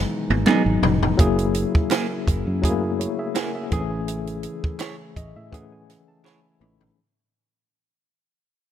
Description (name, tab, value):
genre	lush 1970s-style soul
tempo	83 BPM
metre	4/4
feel	swing 54% on 16ths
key	unclear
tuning	A4 = 441 Hz
part	barky tine electric piano	accompaniment	0.0-7.0 s	E3 to E6	-26 LUFS	left 3 dB	overdrive, fast stereo tremolo
part	chamber organ, principal	sustained chords	0.0-6.9 s	B2 to G#4	-32 LUFS	equal	none
part	fingered electric bass	bass	0.0-6.9 s	F1 to A2	-26 LUFS	equal	none
part	compact cocktail drum kit	drums	0.3-7.0 s	hi-hat, kick drum, snare drum, toms	-22 LUFS	equal	none
part	semi-hollow electric guitar	riff	0.5-6.4 s	A#3 to C#5	-26 LUFS	right 7 dB	spring reverb
part	group handclap	percussion	0.5-6.4 s	none	-36 LUFS	right 3 dB	none
room	studio reverb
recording	none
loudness	-20 LUFS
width	side -10 dB against mid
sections	0.0-1.2 A section; 1.2-7.0 B section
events	drum fill 0.0-1.2, 6.3-7.0; fade-out 1.2-7.0; tine electric piano fill 4.8-7.0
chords	0.0 Emaj7; 1.2 F#9; 3.7 Amaj7